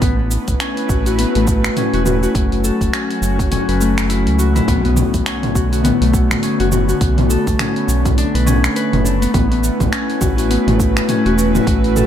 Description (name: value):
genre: organic downtempo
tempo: 103 BPM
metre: 4/4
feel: swing 58% on 16ths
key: B minor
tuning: A4 = 439 Hz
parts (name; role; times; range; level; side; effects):
- airy breathy pad; sustained chords; 0.0-12.1 s; D3 to B4; -21 LUFS; right 1 dB; chorus, sidechain pumping, shimmer reverb
- Celtic harp; arpeggios; 0.0-12.1 s; A3 to B4; -18 LUFS; left 4 dB; tape echo, shimmer reverb
- round analog bass; bass; 0.0-12.0 s; E1 to C#2; -18 LUFS; right 1 dB; tube saturation, sidechain pumping
- deep house drum kit; drums; 0.0-12.1 s; cabasa, finger snaps, hi-hat, toms; -22 LUFS; right 1 dB; none
- electronic kick drum; drums; 0.0-11.8 s; none; -19 LUFS; right 1 dB; none
- impact; sound effects; 4.7-7.0 s; none; -27 LUFS; right 1 dB; none
room: light reverb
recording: none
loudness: -13 LUFS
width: side -10 dB against mid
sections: 0.0-4.7 A section; 4.7-12.1 B section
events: impact 4.7-7.0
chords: 0.0 A; 2.4 F#m; 4.7 Bm7; 9.3 A